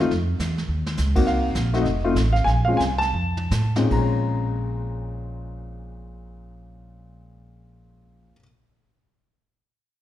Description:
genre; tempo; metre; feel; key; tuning
jazz piano trio; 145-208 BPM; 4/4; swing 62% on 8ths; Bb minor; A4 = 439 Hz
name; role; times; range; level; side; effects
warm baby grand piano; melody; 0.0-8.4 s; Bb2 to Bb5; -23 LUFS; left 2 dB; none
upright bass; bass; 0.0-8.3 s; F1 to A2; -24 LUFS; right 1 dB; none
vintage brush drum kit; drums; 0.0-4.0 s; brushed snare drum, crash cymbal, hi-hat, kick drum, snare drum, toms; -30 LUFS; right 2 dB; none
room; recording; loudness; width
light reverb; none; -20 LUFS; side -13 dB against mid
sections
0.0-1.3 A section; 1.3-3.9 B section; 3.9-7.2 C section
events
drum fill 0.7, 3.1-3.9; slowing down 1.3-3.9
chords
0.1 F5; 1.3 Cm7b5; 1.9 F7; 2.5 Bb7sus2; 3.1 F; 3.9 Bbm9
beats
| 0.11 0.40 0.69 0.98 | 1.27 1.56 1.85 2.16 | 2.47 2.80 3.15 3.52 | 3.91 4.33 4.74 5.15 | 5.56 5.98 6.39 6.80

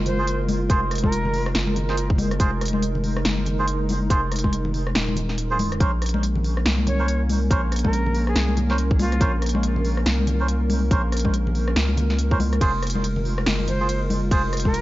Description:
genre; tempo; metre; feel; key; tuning
deep dubstep; 141 BPM; 4/4; swing 60% on 16ths, half-time; Bb minor; A4 = 441 Hz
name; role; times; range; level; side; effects
dark analog pad; sustained chords; 0.0-14.8 s; Ab3 to Bb4; -28 LUFS; right 1 dB; chorus
soft dub sub bass; bass; 0.0-14.8 s; Eb1 to Db2; -23 LUFS; equal; none
bright reedy shakuhachi; melody; 0.1-1.4, 6.9-9.3, 13.7-14.8 s; F4 to Db5; -32 LUFS; right 1 dB; vintage 12-bit sampler grit, dub echo
deep house drum kit; drums; 0.1-14.8 s; hi-hat, ride cymbal, rim click, snare drum; -28 LUFS; equal; none
congas; percussion; 0.1-14.7 s; none; -29 LUFS; left 3 dB; dub echo
melodica; stabs; 0.2-14.4 s; Db4 to C5; -29 LUFS; right 2 dB; dub echo
electronic kick drum; drums; 0.7-14.7 s; none; -21 LUFS; equal; none
room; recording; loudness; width
light reverb; vinyl crackle, nothing above 7.5 kHz; -19 LUFS; side -16 dB against mid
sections
0.0-14.8 A section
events
kick drops out 5.4-5.8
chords
0.0 Fm; 5.8 Bbmadd9; 12.6 Fm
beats
0.27 | 0.70 1.12 1.55 1.97 | 2.40 2.83 3.25 3.68 | 4.10 4.53 4.95 5.38 | 5.80 6.23 6.66 7.08 | 7.51 7.93 8.36 8.78 | 9.21 9.63 10.06 10.48 | 10.91 11.34 11.76 12.19 | 12.61 13.04 13.46 13.89 | 14.31 14.74

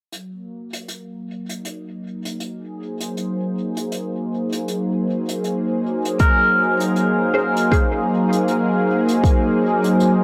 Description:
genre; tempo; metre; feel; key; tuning
ambient dub; 79 BPM; 4/4; swing 59% on 16ths; unclear; A4 = 440 Hz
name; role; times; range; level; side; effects
warm analog pad; sustained chords; 0.1-10.2 s; Gb3 to C5; -22 LUFS; equal; chorus
hi-hat; drums; 0.1-10.2 s; none; -35 LUFS; equal; dub echo
pedal steel guitar; arpeggios; 6.2-7.8 s; Bb4; -24 LUFS; equal; vintage 12-bit sampler grit, dub echo
electronic kick drum; drums; 6.2-9.4 s; none; -19 LUFS; equal; none
filtered dub chord stab; stabs; 7.3-7.9 s; Db4 to C5; -28 LUFS; equal; phaser, ensemble chorus, dub echo
room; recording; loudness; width
wet spring reverb, RT60 2.5 s; none; -20 LUFS; mono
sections
0.1-10.2 A section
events
fade-in on analog synth pad 0.1-10.2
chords
0.1 Ab9; 6.2 Bb7sus2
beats
| 0.13 0.89 1.65 2.41 | 3.17 3.93 4.69 5.45 | 6.21 6.96 7.72 8.48 | 9.24 10.00

